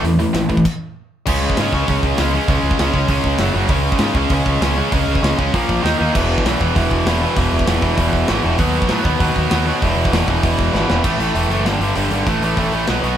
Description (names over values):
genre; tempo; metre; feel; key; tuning
punk rock; 196 BPM; 4/4; straight; unclear; A4 = 440 Hz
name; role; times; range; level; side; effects
tight distorted guitar; riff; 0.0-13.2 s; E2 to D#4; -20 LUFS; left 6 dB; distortion
tight distorted guitar; riff; 0.0-13.2 s; E2 to D#4; -20 LUFS; right 6 dB; distortion
fuzz picked electric bass; bass; 0.0-13.1 s; E1 to A2; -20 LUFS; equal; overdrive
tight metal drum kit; drums; 0.0-13.1 s; crash cymbal, hi-hat, kick drum, snare drum; -22 LUFS; equal; none
room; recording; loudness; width
moderate studio reverb, RT60 0.8 s; band playing live in one room; -15 LUFS; side -10 dB against mid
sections
0.0-1.3 A section; 1.3-11.0 B section; 11.0-13.2 C section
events
stop 0.7-1.3; drum fill 10.7-11.0; half time 11.0-13.2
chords
0.0 A5; 0.7 N.C.; 1.3 C#5; 3.4 F#5; 3.7 C#5; 5.5 A#5; 5.8 D#5; 6.1 E5; 8.6 B/D#; 9.8 E5; 11.0 A5; 11.7 G5; 12.3 A5